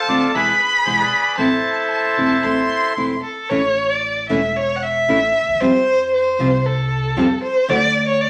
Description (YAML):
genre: tango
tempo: 115 BPM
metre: 4/4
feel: rubato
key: A minor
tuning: A4 = 440 Hz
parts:
  - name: bandoneon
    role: melody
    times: 0.0-2.9 s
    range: E4 to E5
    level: -22 LUFS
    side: equal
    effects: none
  - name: warm violin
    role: second line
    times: 0.0-8.3 s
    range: A4 to C6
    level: -20 LUFS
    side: equal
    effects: none
  - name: nylon-string guitar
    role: accompaniment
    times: 0.1-7.8 s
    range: B2 to F#4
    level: -22 LUFS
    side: equal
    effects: none
  - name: upright bass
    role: bass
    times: 0.1-8.3 s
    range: E1 to F2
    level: -29 LUFS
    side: equal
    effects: none
room: wet studio reverb, RT60 0.8 s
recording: none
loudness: -18 LUFS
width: mono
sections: 0.0-3.5 A section; 3.5-8.3 B section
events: violin solo 3.5-8.3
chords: 0.3 E; 1.4 Am; 3.5 A; 5.6 Fadd9; 7.7 Dadd9